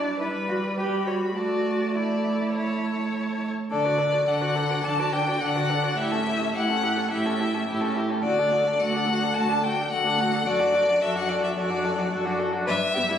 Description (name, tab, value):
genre	quick classical-period movement for string quartet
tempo	106 BPM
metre	4/4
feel	straight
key	D major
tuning	A4 = 439 Hz
part	rich violin	melody	0.0-13.2 s	D5 to B5	-26 LUFS	left 3 dB	none
part	warm violin	second line	0.0-13.1 s	E4 to D5	-29 LUFS	left 2 dB	none
part	rich viola	accompaniment	0.0-13.2 s	F#3 to F#4	-29 LUFS	right 2 dB	none
part	dark cello	bass	0.0-13.2 s	D2 to G4	-29 LUFS	right 2 dB	none
room	moderate concert hall reverb, RT60 1.8 s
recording	recorded on a phone in the room, studio reverb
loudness	-22 LUFS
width	side -9 dB against mid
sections	0.0-3.7 A section; 3.7-13.2 B section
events	none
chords	0.2 Em/G (rootless); 1.4 Asus4; 2.5 A; 3.7 D; 6.0 A7; 8.2 D; 10.5 D/F#; 12.7 Em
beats	0.21 0.78 | 1.36 1.95 2.55 3.13 | 3.71 4.28 4.85 5.42 | 5.98 6.55 7.12 7.67 | 8.23 8.79 9.35 9.91 | 10.46 11.02 11.57 12.12 | 12.68